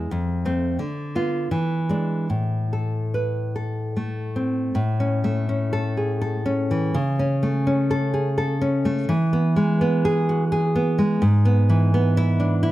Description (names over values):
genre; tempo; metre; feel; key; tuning
romantic piece for solo classical guitar; 71-89 BPM; 3/4; rubato; A minor, A major from 4.7 s; A4 = 437 Hz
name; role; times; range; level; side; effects
nylon-string guitar; solo; 0.0-12.7 s; F2 to B4; -20 LUFS; equal; none
room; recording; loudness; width
light reverb; none; -20 LUFS; side -15 dB against mid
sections
0.0-4.7 A section; 4.7-12.7 B section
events
none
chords
0.1 F; 0.8 Bdim/D; 1.5 E7; 2.3 Am; 4.7 A; 7.0 A/C#; 9.1 E; 11.2 E/G#